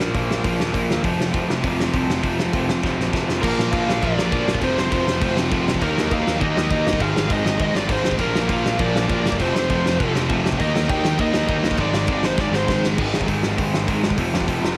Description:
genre	punk rock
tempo	201 BPM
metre	4/4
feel	straight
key	Bb mixolydian from 3.4 s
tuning	A4 = 437 Hz
part	overdriven electric guitar	riff	0.0-14.8 s	F2 to Eb4	-28 LUFS	equal	none
part	sludgy distorted guitar	riff	0.0-14.8 s	F2 to Eb4	-28 LUFS	equal	overdrive
part	fuzz picked electric bass	bass	0.0-14.7 s	F1 to Eb2	-28 LUFS	equal	overdrive
part	loose indie drum kit	drums	0.0-14.7 s	crash cymbal, hi-hat, kick drum, snare drum	-26 LUFS	equal	none
part	bluesy overdriven lead guitar	melody	3.4-12.8 s	Bb4 to G5	-27 LUFS	equal	distortion
part	high-gain distorted guitar	riff	3.4-13.0 s	F2 to F4	-32 LUFS	equal	none
room	light reverb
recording	heavily compressed radio sound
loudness	-20 LUFS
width	mono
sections	0.0-3.4 A section; 3.4-13.0 B section; 13.0-14.8 C section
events	drum fill 2.8-3.4, 12.4-13.0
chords	0.0 Bb5; 1.0 F5; 3.4 Bb; 4.6 F; 5.8 Eb; 7.0 Ab; 8.2 Bb; 9.4 F; 10.6 Eb; 11.8 Ab; 13.0 Ab5; 14.2 F5

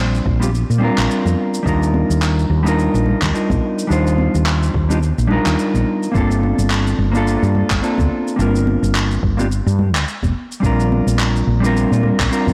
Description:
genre	sunset chillout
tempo	107 BPM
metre	4/4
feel	swing 57% on 16ths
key	unclear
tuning	A4 = 439 Hz
part	mellow electric guitar	accompaniment	0.0-12.5 s	G3 to C5	-21 LUFS	equal	tape echo
part	woody fretless electric bass	bass	0.0-12.5 s	F1 to Bb2	-19 LUFS	equal	none
part	electronic shaker and handclaps	drums	0.1-12.5 s	none	-27 LUFS	equal	studio reverb
part	electronic kick drum	drums	0.3-12.5 s	none	-24 LUFS	equal	studio reverb
part	congas	percussion	0.4-12.5 s	none	-30 LUFS	equal	none
room	light reverb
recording	blown-out, overdriven recording, overdrive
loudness	-17 LUFS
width	mono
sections	0.0-12.5 A section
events	none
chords	0.0 Bb69; 1.7 Ebmaj9; 6.1 Gm11; 10.6 Bb69

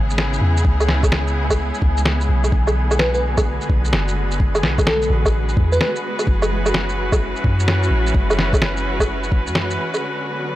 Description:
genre	future garage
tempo	128 BPM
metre	4/4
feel	swing 64% on 16ths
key	B dorian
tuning	A4 = 441 Hz
part	clear studio string section	sustained chords	0.0-10.6 s	C#3 to B4	-24 LUFS	equal	sidechain pumping
part	soft 808-style bass	bass	0.0-9.8 s	F#1 to F#2	-20 LUFS	equal	sidechain pumping
part	flickering grainy texture	texture	0.0-10.6 s	F#3 to G#5	-29 LUFS	right 1 dB	built-in reverb
part	electronic shaker, snare drum and woodblock	drums	0.1-10.0 s	none	-20 LUFS	equal	low-pass filter on perc, studio reverb, low-pass filter on snare
part	electronic kick drum	drums	0.6-9.4 s	none	-19 LUFS	equal	studio reverb
part	bell-like FM electric piano	melody	3.0-5.9 s	A4 to B4	-24 LUFS	equal	chorus, analog delay
room	little or no reverb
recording	dry, gritty hardware recording, transformer saturation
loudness	-16 LUFS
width	side -15 dB against mid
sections	0.0-10.0 A section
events	band accent 9.6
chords	0.0 C#m7; 2.5 Bm7; 6.3 F#7(no3); 10.0 Bm

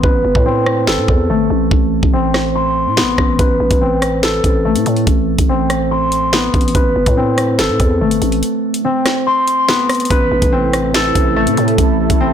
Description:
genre	hip hop, drill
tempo	143 BPM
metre	4/4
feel	half-time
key	A minor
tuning	A4 = 441 Hz
part	concert harp	arpeggios	0.0-12.3 s	A3 to C6	-15 LUFS	left 1 dB	low-pass filter, ping-pong delay
part	growling 808-style bass	bass	0.0-12.3 s	G1 to A2	-18 LUFS	equal	none
part	drill drum kit	drums	0.0-12.2 s	hi-hat, kick drum, rim click, snare drum	-16 LUFS	equal	none
part	sweeping resonant pad	sustained chords	10.3-12.3 s	C3 to A4	-20 LUFS	right 3 dB	chorus
room	light reverb, digital ambience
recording	blown-out, overdriven recording, overdrive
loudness	-12 LUFS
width	side -9 dB against mid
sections	0.0-12.3 A section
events	break 0.0-3.4; filter sweep on harp 0.0-10.1; kick muted 8.4-10.1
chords	0.0 Amadd9

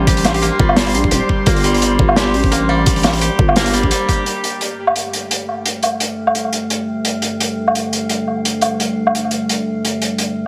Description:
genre	half-time drum and bass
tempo	172 BPM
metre	4/4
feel	swing 55% on 16ths, half-time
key	G minor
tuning	A4 = 440 Hz
part	dark analog pad	sustained chords	0.0-10.5 s	G3 to C6	-28 LUFS	equal	chorus, sidechain pumping
part	koto	arpeggios	0.0-6.3 s	D3 to G4	-24 LUFS	equal	delay
part	growling 808-style bass	bass	0.0-3.9 s	D1 to Bb1	-20 LUFS	equal	none
part	metallic inharmonic drone	texture	0.0-10.5 s	A3 to G4	-26 LUFS	equal	chorus, built-in reverb
part	crunchy breakbeat drum kit	drums	0.1-10.3 s	hi-hat, snare drum, woodblock	-20 LUFS	equal	none
part	electronic kick drum	drums	0.1-4.2 s	none	-19 LUFS	equal	overdrive
part	plucky unison lead	melody	0.3-0.5 s	none	barely audible	none	none
room	moderate echo chamber reverb, RT60 1.6 s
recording	heavily compressed radio sound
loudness	-17 LUFS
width	mono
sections	0.0-4.3 A section; 4.3-10.5 B section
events	drop 0.0-4.3; filter sweep on analog synth pad 4.3-10.5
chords	0.0 G5

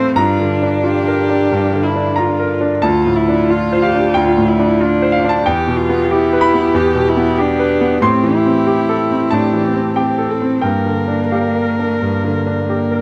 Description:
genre	neoclassical piano and strings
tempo	91 BPM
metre	4/4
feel	rubato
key	unclear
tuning	A4 = 440 Hz
part	dark cello	second line	0.0-13.0 s	Bb3 to G4	-21 LUFS	equal	none
part	bright grand piano	accompaniment	0.0-13.0 s	D2 to C6	-17 LUFS	equal	none
part	warm viola	accompaniment	0.0-13.0 s	E4 to C5	-23 LUFS	equal	none
room	little or no reverb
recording	close, detailed microphones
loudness	-15 LUFS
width	mono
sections	0.0-13.0 A section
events	none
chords	0.2 Gm7; 2.8 Dm7; 5.4 Em; 8.0 Am7; 10.6 Gm7

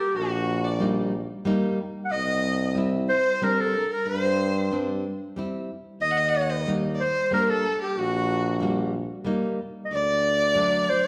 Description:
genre	klezmer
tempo	92 BPM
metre	3/4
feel	straight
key	unclear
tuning	A4 = 437 Hz
part	warm clarinet	melody	0.0-11.1 s	F#4 to F#5	-27 LUFS	equal	none
part	bright violin	second line	0.0-11.0 s	F#4 to F#5	-33 LUFS	equal	none
part	warm tuba	bass	0.1-11.1 s	Bb1 to G2	-31 LUFS	equal	none
part	nylon-string guitar	accompaniment	0.8-10.9 s	F#3 to F#4	-30 LUFS	equal	none
room	wet recital hall reverb, RT60 1.5 s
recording	recorded in a church or concert hall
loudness	-25 LUFS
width	mono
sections	0.0-11.1 A section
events	none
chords	0.0 Eb; 2.1 C; 6.0 Eb; 9.9 D

